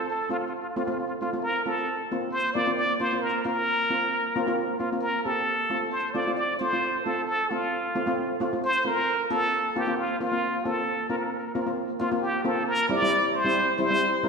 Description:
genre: calypso.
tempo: 133 BPM.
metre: 4/4.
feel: straight.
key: F major.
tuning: A4 = 440 Hz.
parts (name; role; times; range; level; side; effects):
trumpet with plunger mute; melody; 0.0-14.3 s; F4 to D5; -26 LUFS; equal; none.
steel pan; accompaniment; 0.0-14.3 s; G3 to G4; -28 LUFS; equal; none.
room: wet scoring stage reverb, RT60 1.6 s.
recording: recorded in a church or concert hall.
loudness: -24 LUFS.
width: side -5 dB against mid.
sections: 0.0-12.7 A section; 12.7-14.3 B section.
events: none.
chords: 0.0 F; 1.9 Bbsus2; 5.5 F; 9.1 Bbsus2; 12.7 C.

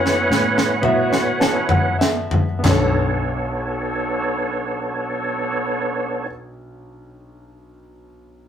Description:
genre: slow gospel.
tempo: 30-39 BPM (dotted quarters).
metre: 6/8.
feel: straight.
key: B minor.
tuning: A4 = 436 Hz.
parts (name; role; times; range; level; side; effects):
warm concert grand piano; accompaniment; 0.0-8.5 s; B1 to A5; -25 LUFS; left 1 dB; none.
bright tonewheel organ; sustained chords; 0.0-6.3 s; B3 to F#5; -21 LUFS; right 1 dB; slow rotary speaker, chorus vibrato.
hollow-body short-scale fingered electric bass; bass; 0.0-6.3 s; B1 to A2; -29 LUFS; equal; none.
crisp fusion drum kit; drums; 0.1-3.0 s; snare drum, splash cymbal, toms; -19 LUFS; equal; none.
room: wet studio reverb, RT60 0.6 s.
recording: rough rehearsal-room recording.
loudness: -18 LUFS.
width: side -9 dB against mid.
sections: 0.0-2.7 A section; 2.7-6.7 B section.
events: drum fill 0.0-2.7; slowing down 0.0-2.7; tonewheel organ solo 0.0-2.7; grand piano fill 0.8-2.7.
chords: 0.0 F#7sus4; 2.7 Bm9.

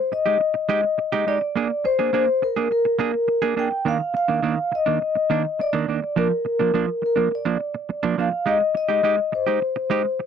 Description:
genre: disco.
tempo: 104 BPM.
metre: 4/4.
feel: straight.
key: unclear.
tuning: A4 = 440 Hz.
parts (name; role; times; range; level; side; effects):
vibraphone with soft mallets; melody; 0.0-10.2 s; Bb4 to G5; -21 LUFS; left 2 dB; none.
semi-hollow electric guitar; accompaniment; 0.1-10.2 s; Eb3 to Ab4; -23 LUFS; right 8 dB; tube saturation.
room: light reverb.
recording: dry, close 1970s-style studio recording.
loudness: -19 LUFS.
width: side -7 dB against mid.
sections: 0.0-10.3 A section.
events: none.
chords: 0.0 Abmaj7(no3); 1.6 Bb7; 3.9 Bbadd11/Eb; 6.2 Bb/F; 8.5 Abmaj7.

